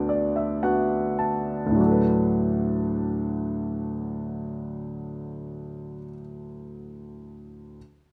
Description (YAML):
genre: classical, lyrical solo piano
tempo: 52 BPM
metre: 3/4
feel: rubato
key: D major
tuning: A4 = 439 Hz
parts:
  - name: clear grand piano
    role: solo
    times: 0.0-7.8 s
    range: D2 to A5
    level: -27 LUFS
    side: equal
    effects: none
room: little or no reverb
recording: close, detailed microphones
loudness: -25 LUFS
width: mono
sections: 0.0-1.8 A section; 1.8-5.3 B section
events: grand piano fill 0.0-1.8; slowing down 0.0-1.8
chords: 0.0 D6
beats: 0.64 | 1.79 2.97 4.12